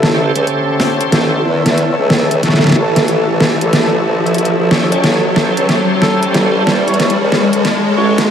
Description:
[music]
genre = glitch hop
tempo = 92 BPM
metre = 4/4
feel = swing 64% on 16ths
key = unclear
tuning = A4 = 441 Hz
[part]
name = mellow trumpet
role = melody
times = 0.0, 6.0-8.2 s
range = A4 to C#5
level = -24 LUFS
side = equal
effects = low-pass filter, tape echo
[part]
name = formant-sweep wobble bass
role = bass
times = 0.0-8.3 s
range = G1 to E2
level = -16 LUFS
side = equal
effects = chorus, tube saturation, high-pass filter
[part]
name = pop drum kit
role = drums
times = 0.0-8.3 s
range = hi-hat, snare drum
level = -15 LUFS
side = equal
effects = overdrive
[part]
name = riser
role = sound effects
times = 0.0-8.3 s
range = none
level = -17 LUFS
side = left 1 dB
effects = none
[part]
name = granular cloud pad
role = texture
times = 0.0-8.3 s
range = A4 to A5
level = -20 LUFS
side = equal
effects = built-in reverb, analog chorus
[part]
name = bright tonewheel organ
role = stabs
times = 0.1-8.2 s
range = C#4 to C#5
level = -21 LUFS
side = equal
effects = overdrive, chorus vibrato, slow rotary speaker, tape echo
[sound]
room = wet huge ambient reverb, RT60 7.9 s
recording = dreamy mix soaked in reverb, vinyl crackle, high-pass filter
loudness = -11 LUFS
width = side -8 dB against mid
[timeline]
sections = 0.0-8.3 A section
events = build-up 0.0-8.3; drum fill 0.0-8.3; riser 0.0-8.3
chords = 0.0 A7#9

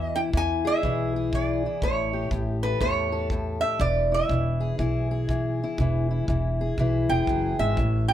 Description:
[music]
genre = acoustic country blues, solo or duo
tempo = 121 BPM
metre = 4/4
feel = swing 62% on 8ths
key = E mixolydian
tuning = A4 = 440 Hz
[part]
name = lap resonator guitar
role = melody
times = 0.0-8.1 s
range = B4 to G#5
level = -26 LUFS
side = right 3 dB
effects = none
[part]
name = fingerpicked steel-string acoustic guitar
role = accompaniment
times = 0.0-8.1 s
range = A2 to A4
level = -28 LUFS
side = left 4 dB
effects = none
[part]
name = upright bass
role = bass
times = 0.0-8.1 s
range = E1 to E2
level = -27 LUFS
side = equal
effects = none
[part]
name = kick drum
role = drums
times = 0.3-7.9 s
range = none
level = -31 LUFS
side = equal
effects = none
[sound]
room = light reverb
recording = none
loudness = -22 LUFS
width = side -11 dB against mid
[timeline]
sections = 0.0-8.1 A section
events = none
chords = 0.0 E7; 1.8 A7; 3.8 E

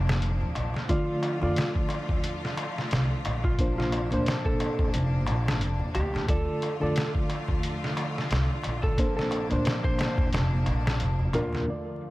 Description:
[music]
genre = trip hop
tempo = 89 BPM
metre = 4/4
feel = swing 57% on 16ths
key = unclear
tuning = A4 = 440 Hz
[part]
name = reed electric piano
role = accompaniment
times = 0.0-12.1 s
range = Bb2 to D5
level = -31 LUFS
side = equal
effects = tremolo, tape echo
[part]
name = bright studio string section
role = sustained chords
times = 0.0-12.1 s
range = C3 to F4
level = -35 LUFS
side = left 1 dB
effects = low-pass filter
[part]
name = upright bass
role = bass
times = 0.0-11.6 s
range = F1 to F2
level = -28 LUFS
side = equal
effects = none
[part]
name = trip hop sampler-style drum kit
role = drums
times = 0.1-12.1 s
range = hi-hat, kick drum, snare drum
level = -29 LUFS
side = equal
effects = low-pass filter on kick, low-pass filter on hats, low-pass filter on snare, low-pass filter on room
[part]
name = darbuka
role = percussion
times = 0.1-11.6 s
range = none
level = -37 LUFS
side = left 1 dB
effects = none
[part]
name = electric slide guitar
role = melody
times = 0.9-11.6 s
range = F4 to C5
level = -34 LUFS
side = right 1 dB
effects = tape echo
[part]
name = backwards swelling texture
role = texture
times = 11.9-12.1 s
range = D5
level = -51 LUFS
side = right 3 dB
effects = none
[sound]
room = little or no reverb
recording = vinyl crackle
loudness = -25 LUFS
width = side -18 dB against mid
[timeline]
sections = 0.0-11.7 A section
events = none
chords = 0.0 Bbadd9; 0.9 Dm; 3.6 Bbadd9; 6.3 Dm; 9.0 Bbadd9

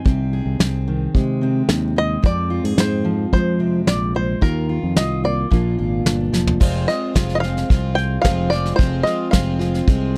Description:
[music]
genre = indie folk with a building arrangement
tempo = 110 BPM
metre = 4/4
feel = straight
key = unclear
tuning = A4 = 442 Hz
[part]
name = bluegrass banjo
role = melody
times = 0.0-10.2 s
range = Bb4 to Ab5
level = -26 LUFS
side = equal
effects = none
[part]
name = fingerpicked steel-string acoustic guitar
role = accompaniment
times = 0.0-8.8 s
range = F2 to Ab4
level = -26 LUFS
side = equal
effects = none
[part]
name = fingered electric bass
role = bass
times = 0.1-10.2 s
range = F1 to F3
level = -24 LUFS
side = equal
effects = none
[part]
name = soft brush drum kit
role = drums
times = 0.1-10.2 s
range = crash cymbal, kick drum, snare drum, toms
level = -20 LUFS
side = equal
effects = none
[part]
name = picked plugged-in twelve-string acoustic guitar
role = accompaniment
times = 6.6-10.2 s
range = F2 to F4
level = -26 LUFS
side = equal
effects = none
[sound]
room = little or no reverb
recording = dry, close 1970s-style studio recording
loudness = -19 LUFS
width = mono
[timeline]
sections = 0.0-6.6 A section; 6.6-10.2 B section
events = drum fill 6.3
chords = 0.0 Ab/C; 2.2 Fm; 4.4 Ebsus2; 5.5 Bb; 6.6 Fm

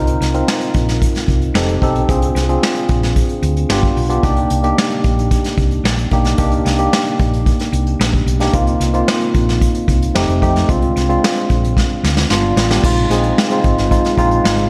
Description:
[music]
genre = polished 1980s jazz-funk pop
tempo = 112 BPM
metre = 4/4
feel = straight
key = unclear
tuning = A4 = 440 Hz
[part]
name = tine electric piano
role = accompaniment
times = 0.0-14.7 s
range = G3 to Bb4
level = -20 LUFS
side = equal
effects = overdrive, subtle chorus, slapback echo
[part]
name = hollow-body short-scale fingered electric bass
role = bass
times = 0.0-14.7 s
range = F1 to F2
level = -20 LUFS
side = equal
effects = none
[part]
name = vintage brush drum kit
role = drums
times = 0.1-14.7 s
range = crash cymbal, hi-hat, kick drum, snare drum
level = -19 LUFS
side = equal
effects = none
[sound]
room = moderate concert hall reverb, RT60 1.9 s, small room ambience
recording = big arena sound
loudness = -15 LUFS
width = mono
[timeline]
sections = 0.0-12.8 A section; 12.8-14.7 B section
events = drum fill 11.8-12.8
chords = 0.0 Bbsus24; 1.6 F7; 2.1 Bb7/C; 3.7 G7; 4.2 Cm7; 8.5 Bbsus24; 10.2 F7; 10.7 Bb7/C; 12.3 G7; 12.8 Bb7sus4

